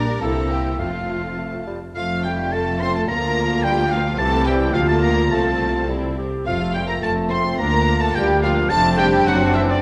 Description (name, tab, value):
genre	quick classical-period movement for symphony orchestra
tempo	106 BPM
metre	2/4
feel	straight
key	F major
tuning	A4 = 442 Hz
part	rich chamber violin section	melody	0.0-9.8 s	D5 to C6	-30 LUFS	equal	none
part	bright oboe	second line	0.0-9.8 s	D5 to C6	-28 LUFS	equal	none
part	clear studio violin section	second line	0.0-9.8 s	D4 to C5	-34 LUFS	equal	none
part	mellow clarinet	second line	0.0-9.8 s	D4 to G4	-30 LUFS	equal	none
part	silver concert flute	second line	0.0-9.8 s	D5 to C6	-30 LUFS	equal	none
part	clear studio viola section	accompaniment	0.0-9.8 s	A3 to A4	-32 LUFS	equal	none
part	warm bassoon	accompaniment	0.0-9.8 s	E3 to C4	-31 LUFS	equal	none
part	mellow French horn section	sustained chords	0.0-9.8 s	D3 to F4	-28 LUFS	equal	none
part	rich chamber cello section	bass	0.0-9.8 s	C2 to C3	-28 LUFS	equal	none
part	rich chamber double bass section	bass	0.0-9.8 s	F1 to D2	-28 LUFS	equal	none
room	moderate concert hall reverb, RT60 1.9 s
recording	none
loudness	-20 LUFS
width	mono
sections	0.0-2.0 A section; 2.0-9.8 B section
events	none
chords	0.2 C7; 0.8 F; 3.1 Bb/D; 4.2 C; 4.7 Bb/D; 5.3 F/C; 5.9 C; 6.5 F; 7.6 Bb/D; 8.7 Dm7/F; 9.3 D7/F#